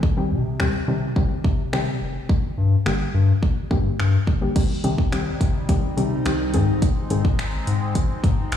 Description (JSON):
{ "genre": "dance-pop", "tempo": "106 BPM", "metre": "4/4", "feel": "straight", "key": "C minor", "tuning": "A4 = 439 Hz", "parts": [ { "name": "soft round pluck", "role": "accompaniment", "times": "0.0-7.7 s", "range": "D3 to Ab4", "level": "-26 LUFS", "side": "left 2 dB", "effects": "chorus" }, { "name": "round analog bass", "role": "bass", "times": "0.0-8.6 s", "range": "F1 to C3", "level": "-22 LUFS", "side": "left 2 dB", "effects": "sidechain pumping" }, { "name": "house drum kit", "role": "drums", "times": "0.0-8.6 s", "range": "crash cymbal, finger snaps, hi-hat, kick drum", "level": "-23 LUFS", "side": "equal", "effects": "none" }, { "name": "chorused pulse-width pad", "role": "sustained chords", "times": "4.6-8.6 s", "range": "G3 to Eb4", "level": "-29 LUFS", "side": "equal", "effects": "phaser, sidechain pumping" } ], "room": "light reverb, digital ambience", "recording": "played on a big sound system in a bare room, large studio reverb, studio ambience", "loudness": "-19 LUFS", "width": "side -9 dB against mid", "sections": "0.0-4.6 A section; 4.6-8.6 B section", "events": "none", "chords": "0.0 Cm; 2.3 Gm; 4.6 Cm; 6.5 Ab" }